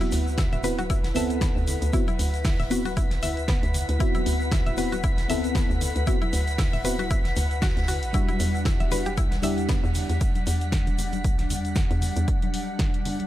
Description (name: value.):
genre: deep house.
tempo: 116 BPM.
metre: 4/4.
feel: swing 56% on 16ths.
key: unclear.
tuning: A4 = 440 Hz.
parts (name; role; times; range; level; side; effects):
airy breathy pad; sustained chords; 0.0-13.3 s; G3 to F#5; -34 LUFS; left 1 dB; chorus, sidechain pumping.
mallet-like synth pluck; arpeggios; 0.0-9.8 s; B3 to E5; -34 LUFS; left 3 dB; chorus, vintage 12-bit sampler grit, sidechain pumping, dub echo.
mellow FM electric piano; stabs; 0.0-10.2 s; G3 to A4; -29 LUFS; equal; chorus, phaser, sidechain pumping, tape echo.
deep house drum kit; drums; 0.0-13.3 s; hi-hat, snare drum; -33 LUFS; equal; none.
congas; percussion; 0.0-13.3 s; none; -37 LUFS; left 3 dB; sidechain pumping on perc.
egg shaker; percussion; 0.0-12.3 s; none; -40 LUFS; right 3 dB; none.
warm studio violin section; texture; 0.0-13.3 s; B6; -38 LUFS; equal; sidechain pumping.
hollow knocking FM bass; bass; 0.1-12.3 s; D1 to E2; -28 LUFS; equal; tube saturation, sidechain pumping.
soft-mallet drum kit; drums; 0.1-10.1 s; hi-hat, ride cymbal, snare drum; -44 LUFS; right 3 dB; sidechain pumping on cymbals, high-pass filter on cymbals, sidechain pumping on hats, high-pass filter on hats, high-pass filter on snare, high-pass filter on room.
electronic kick drum; drums; 0.4-12.9 s; none; -25 LUFS; equal; none.
room: little or no reverb.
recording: none.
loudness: -22 LUFS.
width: side -14 dB against mid.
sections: 0.0-13.3 A section.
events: none.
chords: 0.0 D13; 8.1 Em9.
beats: 0.38 0.90 1.42 | 1.93 2.45 2.97 3.49 | 4.00 4.52 5.04 5.55 | 6.07 6.59 7.11 7.62 | 8.14 8.66 9.18 9.69 | 10.21 10.73 11.24 11.76 | 12.28 12.80.